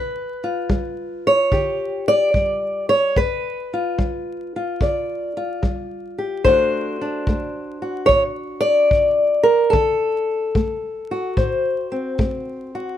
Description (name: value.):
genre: acoustic country blues, solo or duo.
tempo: 73 BPM.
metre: 4/4.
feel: swing 67% on 8ths.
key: G mixolydian.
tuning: A4 = 440 Hz.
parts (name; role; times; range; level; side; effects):
fingerpicked old ladder-braced acoustic guitar; melody; 0.0-13.0 s; G2 to D5; -18 LUFS; left 1 dB; none.
kick drum; drums; 0.7-12.4 s; none; -23 LUFS; equal; none.
room: little or no reverb.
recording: close, detailed microphones, vinyl crackle, faint mains hum.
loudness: -18 LUFS.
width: side -11 dB against mid.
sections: 0.0-13.0 A section.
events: none.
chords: 0.0 G7; 6.5 D7.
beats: 0.71 1.53 2.35 | 3.17 3.99 4.81 5.63 | 6.45 7.27 8.09 8.91 | 9.73 10.55 11.38 12.20.